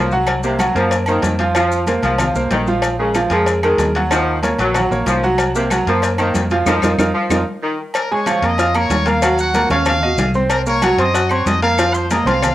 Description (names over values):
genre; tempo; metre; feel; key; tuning
latin, salsa; 188 BPM; 4/4; straight; Bb minor; A4 = 440 Hz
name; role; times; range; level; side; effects
mellow saxophone section; second line; 0.0-7.8 s; C3 to Gb3; -21 LUFS; left 1 dB; cassette tape
bright grand piano; accompaniment; 0.0-12.5 s; Eb3 to Gb6; -18 LUFS; right 2 dB; cassette tape
vintage muted fingered electric bass; bass; 0.0-12.5 s; Bb1 to Gb2; -22 LUFS; equal; none
congas; percussion; 0.1-12.5 s; none; -25 LUFS; left 1 dB; none
maracas; percussion; 0.1-12.5 s; none; -34 LUFS; left 7 dB; none
agogo bells and timbales; percussion; 0.3-12.5 s; none; -26 LUFS; right 2 dB; none
claves; percussion; 0.3-12.5 s; none; -29 LUFS; left 5 dB; none
cowbell; percussion; 0.3-12.5 s; none; -24 LUFS; left 5 dB; none
bright trumpet section; melody; 8.0-12.5 s; Gb4 to Eb6; -20 LUFS; left 1 dB; cassette tape
room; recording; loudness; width
moderate spring reverb, RT60 1.1 s, small room reverb; home recording on cassette; -14 LUFS; side -14 dB against mid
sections
0.0-7.9 A section; 7.9-12.5 B section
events
drum fill 6.7-7.9; band accent 6.7-7.9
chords
0.3 C7(b5, no3); 1.6 Fsus4; 2.8 Bb7(no3); 4.1 Ebm9; 5.4 Cm7b5; 6.7 F7sus4; 7.9 Bbm7; 9.2 Cm7b5; 11.8 F7sus4